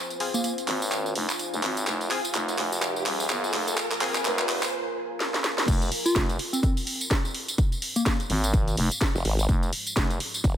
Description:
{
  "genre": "bass house",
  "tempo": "126 BPM",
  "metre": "4/4",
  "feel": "swing 58% on 16ths",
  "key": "F minor",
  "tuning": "A4 = 441 Hz",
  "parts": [
    { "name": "deep dark ambient pad", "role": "sustained chords", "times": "0.0-10.6 s", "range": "Ab3 to Ab5", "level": "-35 LUFS", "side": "equal", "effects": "chorus, built-in reverb, sidechain pumping" },
    { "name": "riser", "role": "sound effects", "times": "0.9-4.7 s", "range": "none", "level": "-34 LUFS", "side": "right 1 dB", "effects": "none" },
    { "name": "house drum kit", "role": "drums", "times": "0.1-10.6 s", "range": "crash cymbal, handclaps, hi-hat, snare drum, tambourine", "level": "-28 LUFS", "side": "equal", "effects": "high-pass filter on hats, high-pass filter on snare, high-pass filter on perc, high-pass filter on cymbals, high-pass filter on room" },
    { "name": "band-passed chord stab", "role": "stabs", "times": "0.2-4.7 s", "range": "C4 to Ab4", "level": "-36 LUFS", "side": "left 4 dB", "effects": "chorus, sidechain pumping, dub echo" },
    { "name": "soft struck synth lead", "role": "melody", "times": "0.3-0.5, 6.1-8.2 s", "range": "Bb3 to F4", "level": "-29 LUFS", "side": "equal", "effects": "chorus, dub echo" },
    { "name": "growling FM bass", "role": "bass", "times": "0.7-10.2 s", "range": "Eb1 to Ab1", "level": "-28 LUFS", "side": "equal", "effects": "overdrive, sidechain pumping, high-pass filter" },
    { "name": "electronic kick drum", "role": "drums", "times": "5.7-10.6 s", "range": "none", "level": "-24 LUFS", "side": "equal", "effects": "none" },
    { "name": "formant-sweep wobble bass", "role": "bass", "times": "9.2-10.6 s", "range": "F1 to Ab1", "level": "-25 LUFS", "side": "equal", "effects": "chorus, tube saturation, sidechain pumping" }
  ],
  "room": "light reverb",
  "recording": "none",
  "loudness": "-23 LUFS",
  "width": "side -10 dB against mid",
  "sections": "0.0-5.7 A section; 5.7-10.6 B section",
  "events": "build-up 0.0-5.7; drum fill 0.0-4.7, 5.2-5.7; riser 0.9-4.7; break 4.7-5.7; drop 5.7-10.6",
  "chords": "0.0 Fm"
}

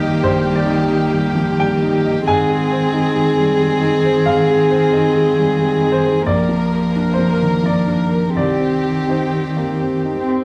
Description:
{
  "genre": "neoclassical piano and strings",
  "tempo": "89 BPM",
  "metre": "3/4",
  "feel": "uneven beats, rubato",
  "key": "unclear",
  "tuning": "A4 = 440 Hz",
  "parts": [
    { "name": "warm chamber violin section", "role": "melody", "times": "0.0-10.3 s", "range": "G4 to Bb4", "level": "-21 LUFS", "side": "equal", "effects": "none" },
    { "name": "dark cello", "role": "second line", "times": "0.0-10.4 s", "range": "Eb3 to C4", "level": "-22 LUFS", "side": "equal", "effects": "none" },
    { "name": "warm upright piano", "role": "accompaniment", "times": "0.0-10.4 s", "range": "Bb1 to Ab5", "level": "-23 LUFS", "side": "equal", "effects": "none" },
    { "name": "warm viola", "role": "accompaniment", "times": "0.0-10.3 s", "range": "Bb3 to C4", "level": "-24 LUFS", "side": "equal", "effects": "none" }
  ],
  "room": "wet studio reverb, RT60 0.6 s",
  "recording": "heard from further back in the room",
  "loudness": "-16 LUFS",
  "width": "mono",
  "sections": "0.0-10.4 A section",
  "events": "none",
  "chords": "0.0 Eb/Bb; 2.3 Ab; 6.3 Bb; 8.4 Cm"
}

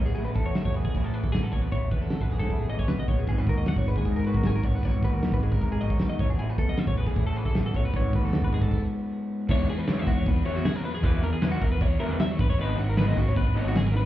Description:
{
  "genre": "math rock and midwest emo",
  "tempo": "154 BPM",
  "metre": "4/4",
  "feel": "straight",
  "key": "G# phrygian",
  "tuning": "A4 = 440 Hz",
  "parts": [
    { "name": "electric guitar through a small old amp", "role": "accompaniment", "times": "0.0-10.3 s", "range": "G#2 to A#4", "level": "-33 LUFS", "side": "right 3 dB", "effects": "none" },
    { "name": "twelve-string electric guitar", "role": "arpeggios", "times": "0.0-14.1 s", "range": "F#4 to F#5", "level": "-34 LUFS", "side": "left 4 dB", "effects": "tape echo" },
    { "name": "fuzz fingered electric bass", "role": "bass", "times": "0.0-14.1 s", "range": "G#1 to A2", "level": "-26 LUFS", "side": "equal", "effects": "overdrive" },
    { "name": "loose indie drum kit", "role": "drums", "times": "0.1-14.0 s", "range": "crash cymbal, kick drum, ride cymbal, snare drum", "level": "-27 LUFS", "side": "equal", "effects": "none" },
    { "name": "raw garage guitar", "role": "riff", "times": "9.5-14.0 s", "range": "D#3 to E4", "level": "-33 LUFS", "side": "equal", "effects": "overdrive" }
  ],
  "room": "little or no reverb",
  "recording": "heard muffled through a wall, club reverb, EQ",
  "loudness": "-23 LUFS",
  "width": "side -14 dB against mid",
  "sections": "0.0-9.5 A section; 9.5-14.1 B section",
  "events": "stop 8.7-9.5",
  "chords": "0.0 Amaj9; 3.3 G#m9; 6.2 Amaj9; 7.9 G#m7; 9.5 E6; 12.4 G#m7"
}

